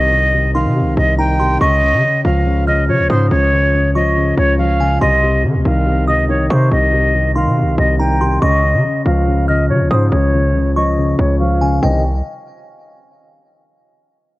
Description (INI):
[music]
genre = hip hop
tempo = 141 BPM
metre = 4/4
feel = half-time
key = unclear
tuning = A4 = 440 Hz
[part]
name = breathy bright concert flute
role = melody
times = 0.0-12.0 s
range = C5 to G5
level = -17 LUFS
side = equal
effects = low-pass filter
[part]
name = dark concert grand piano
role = accompaniment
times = 0.0-12.0 s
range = C3 to C4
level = -18 LUFS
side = left 1 dB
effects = low-pass filter
[part]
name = hard-hitting 808-style bass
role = bass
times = 0.0-12.2 s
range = C2 to Eb3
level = -16 LUFS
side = equal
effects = none
[part]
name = glassy synth bell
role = second line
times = 0.5-12.0 s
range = G5 to F6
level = -23 LUFS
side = right 1 dB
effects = chorus, ping-pong delay
[sound]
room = studio reverb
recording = worn, warbling old tape, cassette tape, warbly pitch drift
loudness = -12 LUFS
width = side -18 dB against mid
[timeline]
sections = 0.0-11.8 A section; 11.8-13.5 B section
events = filter sweep 0.0-11.8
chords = 0.0 Cm; 1.6 Db; 5.0 Cm; 8.4 Db; 11.8 N.C.